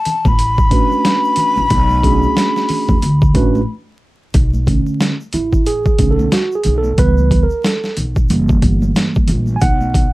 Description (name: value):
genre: hip hop, jazz-hop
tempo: 91 BPM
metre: 4/4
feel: swing 59% on 16ths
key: unclear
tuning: A4 = 440 Hz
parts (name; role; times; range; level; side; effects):
- breathy mellow jazz flute; melody; 0.0-3.7 s; A5 to B5; -17 LUFS; left 2 dB; none
- boom bap sampler-style drum kit; drums; 0.1-10.1 s; hi-hat, kick drum, snare drum; -15 LUFS; equal; overdrive
- congas and egg shaker; percussion; 0.1-10.1 s; none; -26 LUFS; left 1 dB; none
- upright bass; bass; 0.3-10.1 s; F#1 to E2; -17 LUFS; equal; none
- mellow tine electric piano; accompaniment; 0.7-10.1 s; D3 to G#5; -17 LUFS; right 3 dB; none
room: light reverb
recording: dark, warm production, vinyl crackle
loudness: -12 LUFS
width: side -18 dB against mid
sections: 0.0-4.3 A section; 4.3-10.1 B section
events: break 3.7-4.3; tine electric piano solo 4.3-10.1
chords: 0.0 Bm9; 7.0 C#m7b5; 8.3 F#7b9; 9.6 B5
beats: 0.38 1.04 | 1.70 2.36 3.02 3.68 | 4.34 5.00 5.66 6.32 | 6.98 7.64 8.30 8.96 | 9.62